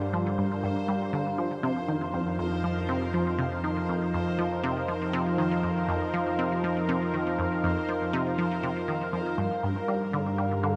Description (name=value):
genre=ambient, sequencer-driven space music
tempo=120 BPM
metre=4/4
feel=straight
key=unclear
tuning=A4 = 441 Hz
part: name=sweeping resonant pad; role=sustained chords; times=0.0-10.8 s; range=F3 to F5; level=-32 LUFS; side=equal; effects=chorus
part: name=analog drone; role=bass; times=0.0-10.8 s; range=F2 to G2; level=-37 LUFS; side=equal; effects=chorus
part: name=bubbling stepped-filter texture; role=texture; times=0.0-10.8 s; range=Bb4 to C5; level=-42 LUFS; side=equal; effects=chorus, built-in reverb
part: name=resonant blip pluck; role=riff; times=0.1-10.7 s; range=F2 to G3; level=-33 LUFS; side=equal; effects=chorus, delay
room=wet huge ambient reverb, RT60 7.4 s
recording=dark, warm production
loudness=-28 LUFS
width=mono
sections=0.0-10.8 A section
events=none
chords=0.0 Gm7; 1.4 F7sus4; 9.4 Gm7